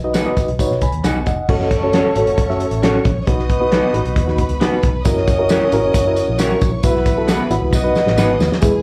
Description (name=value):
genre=uptempo 1960s-style soul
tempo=135 BPM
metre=4/4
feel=straight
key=unclear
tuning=A4 = 440 Hz
part: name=reed electric piano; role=accompaniment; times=0.0-8.8 s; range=G#3 to B5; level=-22 LUFS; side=equal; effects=overdrive, fast tremolo, slapback echo
part: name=vintage muted fingered electric bass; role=bass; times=0.0-8.8 s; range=F1 to B2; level=-24 LUFS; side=equal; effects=none
part: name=electric guitar through a small old amp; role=stabs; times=0.1-8.3 s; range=F#3 to C#5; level=-23 LUFS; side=equal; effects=slapback echo
part: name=warm soul drum kit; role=drums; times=0.1-8.7 s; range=crash cymbal, hi-hat, kick drum, snare drum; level=-21 LUFS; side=equal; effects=none
part: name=tambourine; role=percussion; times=0.1-1.4, 5.0-8.7 s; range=none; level=-36 LUFS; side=equal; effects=none
part: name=bright studio string section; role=second line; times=1.5-8.8 s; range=G#4 to D#6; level=-32 LUFS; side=equal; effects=slapback echo
part: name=mellow horn section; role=second line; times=1.5-8.4 s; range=A3 to E5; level=-23 LUFS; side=equal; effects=slapback echo
room=light reverb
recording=live gig heard through the venue's PA, club reverb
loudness=-16 LUFS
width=mono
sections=0.0-1.5 A section; 1.5-8.6 B section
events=drum fill 7.7-8.6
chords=0.0 B; 1.5 F#m; 3.3 B; 5.1 F#7; 6.8 Bsus4; 7.7 B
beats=0.15 0.60 1.05 | 1.49 1.94 2.38 2.83 | 3.27 3.72 4.17 4.61 | 5.06 5.50 5.95 6.39 | 6.84 7.28 7.73 8.18 | 8.62